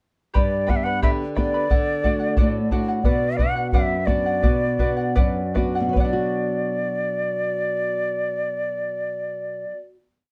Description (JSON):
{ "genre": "andean folk, Andean ensemble", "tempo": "72-89 BPM", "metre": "2/4", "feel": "straight", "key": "B minor", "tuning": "A4 = 440 Hz", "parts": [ { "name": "charango", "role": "accompaniment", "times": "0.3-9.9 s", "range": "G4 to B5", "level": "-31 LUFS", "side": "equal", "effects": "none" }, { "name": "mellow quena", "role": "melody", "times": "0.4-9.8 s", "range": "D5 to F#5", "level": "-27 LUFS", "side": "equal", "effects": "none" }, { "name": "flamenco guitar", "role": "accompaniment", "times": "0.4-10.0 s", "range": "F#2 to G4", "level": "-28 LUFS", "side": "equal", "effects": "none" }, { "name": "bombo", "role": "percussion", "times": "0.4-6.3 s", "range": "none", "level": "-24 LUFS", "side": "equal", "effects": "none" } ], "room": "light reverb", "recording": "dark, warm production", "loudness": "-22 LUFS", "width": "mono", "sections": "0.3-6.0 A section; 6.0-9.3 final chord", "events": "slowing down 3.0-6.0", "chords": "0.3 G; 1.7 D; 3.0 Bm" }